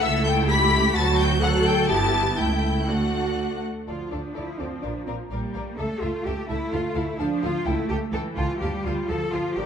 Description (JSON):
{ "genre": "quick classical-period movement for string orchestra", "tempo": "126 BPM", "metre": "2/4", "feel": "rubato", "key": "D major, D minor from 3.9 s", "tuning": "A4 = 441 Hz", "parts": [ { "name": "clear studio violin section", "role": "melody", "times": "0.0-9.6 s", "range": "F5 to B6", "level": "-29 LUFS", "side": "left 3 dB", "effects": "none" }, { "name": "rich studio violin section", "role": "second line", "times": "0.0-9.7 s", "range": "A4 to B5", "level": "-29 LUFS", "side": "left 4 dB", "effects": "none" }, { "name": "bright studio viola section", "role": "accompaniment", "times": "0.0-9.7 s", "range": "E3 to A4", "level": "-28 LUFS", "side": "right 1 dB", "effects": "none" }, { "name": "clear studio double bass section", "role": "bass", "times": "0.0-9.6 s", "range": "G1 to D2", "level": "-27 LUFS", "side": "right 2 dB", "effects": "none" }, { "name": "rich studio cello section", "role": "bass", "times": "0.0-9.7 s", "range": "Bb3 to A4", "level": "-28 LUFS", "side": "right 1 dB", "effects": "none" } ], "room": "moderate scoring stage reverb, RT60 1.8 s", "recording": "dark, warm production", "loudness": "-22 LUFS", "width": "side -7 dB against mid", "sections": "0.0-3.9 A section; 3.9-9.7 A section", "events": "none", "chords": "0.0 A7/C#; 1.0 D; 1.9 Em/G; 2.4 A7/C#; 2.9 D; 3.9 Dm; 4.8 Bb; 5.8 A/C#; 6.7 Dm; 7.7 A7/C#; 8.6 Dm", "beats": "| 0.03 0.50 | 0.97 1.43 | 1.90 2.38 | 2.88 3.38 | 3.88 4.36 | 4.83 5.31 | 5.78 6.25 | 6.72 7.19 | 7.66 8.13 | 8.61 9.09 | 9.57" }